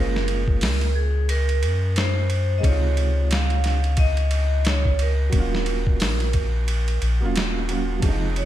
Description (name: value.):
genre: trip hop.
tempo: 89 BPM.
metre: 4/4.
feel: swing 60% on 16ths.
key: unclear.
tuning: A4 = 445 Hz.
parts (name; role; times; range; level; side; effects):
vibraphone with medium hard mallets; melody; 0.0-8.5 s; Ab4 to F5; -29 LUFS; moving between left 3 dB and right 11 dB; auto-pan, dub echo.
felt-muted upright piano; accompaniment; 0.0-8.5 s; C3 to F4; -30 LUFS; right 4 dB; harmonic tremolo.
soft dub sub bass; bass; 0.0-8.5 s; Eb1 to Gb2; -22 LUFS; equal; none.
boom bap sampler-style drum kit; drums; 0.2-8.5 s; hi-hat, kick drum, ride cymbal, snare drum; -24 LUFS; equal; gated reverb.
room: digital ambience.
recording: bright 1980s-style digital production.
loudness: -19 LUFS.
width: side -12 dB against mid.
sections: 0.0-8.5 A section.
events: none.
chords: 0.0 Gbmaj7; 2.6 Dbmaj7; 5.3 Ebm7.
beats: 0.61 1.29 1.96 | 2.63 3.31 3.98 4.66 | 5.33 6.01 6.68 7.35 | 8.03.